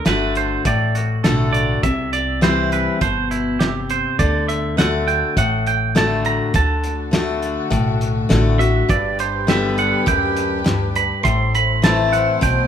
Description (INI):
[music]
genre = honky-tonk and classic country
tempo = 102 BPM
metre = 4/4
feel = straight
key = unclear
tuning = A4 = 440 Hz
[part]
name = twangy electric guitar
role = second line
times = 0.0-12.7 s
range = E4 to C6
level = -21 LUFS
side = right 7 dB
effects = spring reverb
[part]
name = picked steel-string acoustic guitar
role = accompaniment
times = 0.0-12.7 s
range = F#2 to G4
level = -20 LUFS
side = left 4 dB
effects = none
[part]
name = upright bass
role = bass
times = 0.1-12.7 s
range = G1 to D2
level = -24 LUFS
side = right 1 dB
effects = none
[part]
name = cloth-damped thuddy drum kit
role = drums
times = 0.1-12.6 s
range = hi-hat, kick drum, snare drum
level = -21 LUFS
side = right 1 dB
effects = none
[part]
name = warm chamber string section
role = sustained chords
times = 6.5-12.7 s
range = D3 to C5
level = -26 LUFS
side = left 1 dB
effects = none
[sound]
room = moderate large studio reverb, RT60 0.9 s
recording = minimal, uncompressed stereo recording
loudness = -16 LUFS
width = side -9 dB against mid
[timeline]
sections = 0.0-12.7 A section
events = clean electric guitar solo 0.0-12.7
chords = 0.0 D; 1.8 C; 4.2 D; 8.9 G; 11.3 Am